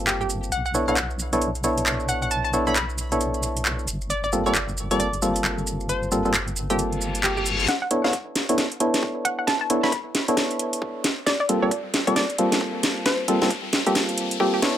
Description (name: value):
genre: UK garage, two-step garage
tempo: 134 BPM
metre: 4/4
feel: swing 61% on 16ths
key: unclear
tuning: A4 = 436 Hz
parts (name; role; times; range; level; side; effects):
- percussive organ stab; stabs; 0.0-14.8 s; G3 to C#5; -24 LUFS; equal; chorus, digital delay
- deep soft wobble bass; bass; 0.0-7.7 s; G1 to B1; -29 LUFS; equal; chorus, sidechain pumping
- hollow square pluck; melody; 0.1-14.6 s; G4 to B5; -27 LUFS; equal; chorus, digital delay
- house drum kit; drums; 0.1-14.7 s; handclaps, hi-hat, shaker, snare drum; -24 LUFS; right 1 dB; none
- reverse cymbal and riser; sound effects; 7.0-14.8 s; none; -31 LUFS; left 5 dB; none
- electronic kick drum; drums; 7.7-14.7 s; none; -35 LUFS; equal; none
room: moderate studio ambience, RT60 0.5 s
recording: none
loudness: -21 LUFS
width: side -10 dB against mid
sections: 0.0-7.7 A section; 7.7-14.8 B section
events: reverse cymbal 7.0-7.7; build-up 7.7-14.8; drum fill 7.7-14.8; riser 7.7-14.8; filter sweep on synth pluck 7.7-14.8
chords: 0.0 Gm11; 0.5 Bm11; 3.9 Gm11; 7.7 Bm11; 11.0 Gm11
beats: 0.07 | 0.52 0.97 1.42 1.86 | 2.31 2.76 3.21 3.65 | 4.10 4.55 5.00 5.45 | 5.89 6.34 6.79 7.24 | 7.68 8.13 8.58 9.03 | 9.47 9.92 10.37 10.82 | 11.27 11.71 12.16 12.61 | 13.06 13.51 13.95 14.40